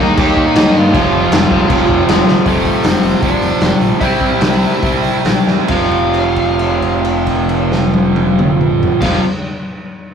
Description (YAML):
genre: punk rock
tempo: 134-158 BPM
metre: 4/4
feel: straight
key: unclear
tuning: A4 = 437 Hz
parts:
  - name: dark smooth lead guitar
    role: melody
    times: 0.0-9.2 s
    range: A3 to G5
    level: -21 LUFS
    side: left 1 dB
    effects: overdrive
  - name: distorted electric guitar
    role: riff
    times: 0.0-9.2 s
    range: F2 to Eb4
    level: -15 LUFS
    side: right 6 dB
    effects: distortion
  - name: raw garage guitar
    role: riff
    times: 0.0-9.2 s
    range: F2 to Eb4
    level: -19 LUFS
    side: left 7 dB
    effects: overdrive
  - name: fat analog bass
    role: bass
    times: 0.0-9.2 s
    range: F1 to C3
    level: -21 LUFS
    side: equal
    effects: none
  - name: raw garage drum kit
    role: drums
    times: 0.2-9.1 s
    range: crash cymbal, hi-hat, kick drum, snare drum, toms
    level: -15 LUFS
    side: left 2 dB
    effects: none
room: light reverb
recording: rough rehearsal-room recording, warm saturation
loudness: -11 LUFS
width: side -7 dB against mid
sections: 0.0-2.5 A section; 2.5-5.7 B section; 5.7-9.3 C section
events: drum fill 2.3, 5.5; slowing down 2.5-5.7; held note 5.7-9.0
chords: 0.0 Eb; 0.9 F5; 2.5 F; 4.0 C; 5.7 F5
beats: 0.18 0.56 | 0.94 1.32 1.70 2.08 | 2.46 2.84 3.22 3.61 | 4.01 4.41 4.83 5.25 | 5.69 6.14 6.59 7.04 | 7.49 7.93 8.38 8.83